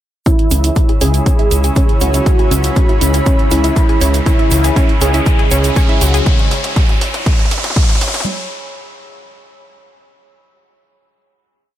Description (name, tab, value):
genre	melodic techno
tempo	120 BPM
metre	4/4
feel	straight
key	C# minor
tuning	A4 = 437 Hz
part	wide unison lead	melody	0.3-6.3 s	C#4 to G#4	-20 LUFS	equal	ensemble chorus, sidechain pumping, tape echo
part	evolving wavetable pad	sustained chords	0.3-8.2 s	G#4 to E6	-27 LUFS	right 1 dB	chorus, built-in reverb, sidechain pumping
part	analog pluck	arpeggios	0.3-6.3 s	C#4 to G#4	-23 LUFS	right 2 dB	chorus, sidechain pumping, dub echo
part	bowed-like drone	drone	1.4-6.3 s	C#3 to C#4	-31 LUFS	equal	none
part	electronic kick drum	drums	0.3-7.9 s	none	-13 LUFS	equal	none
part	techno drum kit	drums	0.3-8.3 s	hi-hat, toms	-24 LUFS	right 1 dB	high-pass filter on hats, high-pass filter on toms, high-pass filter on room
part	egg shaker	percussion	0.3-6.2 s	none	-25 LUFS	right 2 dB	none
part	riser	sound effects	1.9-8.3 s	none	-23 LUFS	equal	none
part	airy breathy pad	texture	0.3-6.3 s	E4 to B5	-26 LUFS	right 1 dB	chorus, sidechain pumping
part	dark detuned saw bass	bass	0.5-6.2 s	C#2	-14 LUFS	equal	sidechain pumping
part	analog synth brass	stabs	1.0-6.5 s	C#3 to C#4	-26 LUFS	left 2 dB	chorus, sidechain pumping, dub echo
room	little or no reverb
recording	none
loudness	-11 LUFS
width	side -12 dB against mid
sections	0.3-8.3 build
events	build-up 0.3-8.3; drum fill 0.3-8.3; filter sweep on synth arpeggio sound 0.3-6.3; filter sweep on analog polysynth 0.3-6.3; riser 1.9-8.3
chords	0.3 C#m7